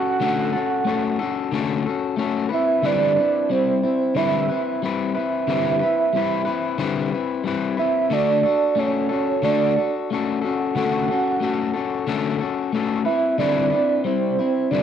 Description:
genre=indie pop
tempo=91 BPM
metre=4/4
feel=swing 55% on 16ths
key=D major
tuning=A4 = 440 Hz
part: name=soft octave-layered synth lead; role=melody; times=0.0-14.8 s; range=C5 to F#5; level=-21 LUFS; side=right 5 dB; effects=tremolo, wide subtle chorus, analog delay
part: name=electric guitar at the edge of break-up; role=accompaniment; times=0.0-14.8 s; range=D3 to B4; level=-22 LUFS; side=left 6 dB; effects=wide subtle chorus, warbly pitch drift, cassette tape
room=wet studio ambience, RT60 0.5 s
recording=home recording on cassette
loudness=-19 LUFS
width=side -8 dB against mid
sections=0.0-14.8 A section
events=none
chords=0.0 Dmaj7; 2.5 Cmaj7/D; 8.1 Dmaj7; 13.1 Cmaj7/D

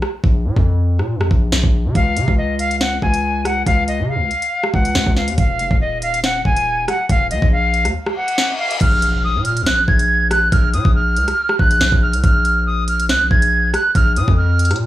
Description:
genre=hip hop, drill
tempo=140 BPM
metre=4/4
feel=half-time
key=Bb minor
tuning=A4 = 440 Hz
part: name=drill drum kit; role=drums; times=0.0-14.8 s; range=crash cymbal, hi-hat, kick drum, rim click, snare drum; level=-17 LUFS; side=equal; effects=none
part: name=distorted 808-style bass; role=bass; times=0.2-14.9 s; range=Eb1 to Db3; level=-19 LUFS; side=equal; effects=distortion
part: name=breathy bright jazz flute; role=melody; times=2.0-14.7 s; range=Eb5 to Ab6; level=-18 LUFS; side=equal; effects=low-pass filter, analog delay
part: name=reverse cymbal and impact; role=sound effects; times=8.1-10.5 s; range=none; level=-27 LUFS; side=left 2 dB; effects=none
room=little or no reverb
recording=dry, gritty hardware recording, studio reverb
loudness=-14 LUFS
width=side -14 dB against mid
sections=0.0-8.8 A section; 8.8-14.9 B section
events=break 0.0-2.0, 8.0-8.8; reverse cymbal 8.1-8.8; impact 8.8-10.5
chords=0.0 Bb5; 2.0 Db; 5.4 Ebmadd9; 8.8 Bb5

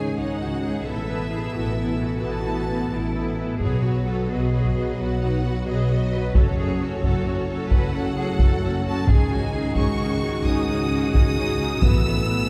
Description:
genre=cinematic, epic orchestral film score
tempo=88 BPM (dotted quarters)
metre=12/8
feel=straight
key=C# minor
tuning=A4 = 440 Hz
part: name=warm symphonic violin section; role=melody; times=0.0-12.5 s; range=C#5 to E6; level=-36 LUFS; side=equal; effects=none
part: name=warm symphonic violin section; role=second line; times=0.0-12.5 s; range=B3 to C#5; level=-36 LUFS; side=equal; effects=none
part: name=warm symphonic viola section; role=accompaniment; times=0.0-12.5 s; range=F#3 to E4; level=-33 LUFS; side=equal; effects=none
part: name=dark French horn section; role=sustained chords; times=0.0-12.5 s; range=B3 to A4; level=-35 LUFS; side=equal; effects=none
part: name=warm trombone section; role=sustained chords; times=0.0-12.5 s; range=G#2 to F#3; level=-34 LUFS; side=equal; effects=none
part: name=clear symphonic double bass section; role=bass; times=0.0-12.4 s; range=F#1 to C#2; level=-28 LUFS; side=equal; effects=none
part: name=rich symphonic cello section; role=bass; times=0.0-12.5 s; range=D#4 to B4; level=-34 LUFS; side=equal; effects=none
part: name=taiko ensemble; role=drums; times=3.6-12.2 s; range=none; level=-24 LUFS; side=equal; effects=none
room=wet scoring stage reverb, RT60 1.7 s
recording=heard from further back in the room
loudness=-23 LUFS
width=mono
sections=0.0-12.5 A section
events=none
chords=0.0 C#sus2; 0.9 Asus2; 3.6 B; 6.3 F#m; 9.1 C#sus2; 11.8 Asus2

